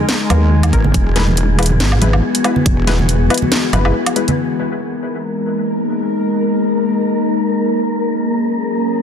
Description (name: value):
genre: deep dubstep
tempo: 140 BPM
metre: 4/4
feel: swing 55% on 16ths, half-time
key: G# minor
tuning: A4 = 440 Hz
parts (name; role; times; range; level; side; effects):
- warm duduk; melody; 0.0-0.6 s; G#3; -30 LUFS; right 2 dB; dub echo
- bowed-like drone; sustained chords; 0.0-9.0 s; E3 to A#4; -19 LUFS; left 3 dB; built-in reverb
- wind-like tuned noise texture; texture; 0.0-9.0 s; G#3 to A#4; -22 LUFS; right 1 dB; built-in reverb
- garage drum kit; drums; 0.1-4.4 s; hi-hat, snare drum, woodblock; -19 LUFS; right 1 dB; low-pass filter on hats, low-pass filter on snare, low-pass filter on perc
- filtered dub chord stab; stabs; 0.3-4.3 s; G#3 to B4; -23 LUFS; left 4 dB; chorus, dub echo
- wobble bass; bass; 0.3-3.9 s; E1 to D#2; -14 LUFS; equal; chorus
- congas; percussion; 0.3-4.4 s; none; -22 LUFS; right 3 dB; dub echo
- electronic kick drum; drums; 0.7-2.8 s; none; -16 LUFS; equal; none
room: light reverb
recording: dense, heavily limited modern master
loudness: -13 LUFS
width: side -8 dB against mid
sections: 0.0-4.4 A section; 4.4-9.0 B section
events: filter sweep on synth drone 4.4-9.0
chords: 0.0 G#madd9; 0.9 E; 4.4 G#sus2; 7.8 F#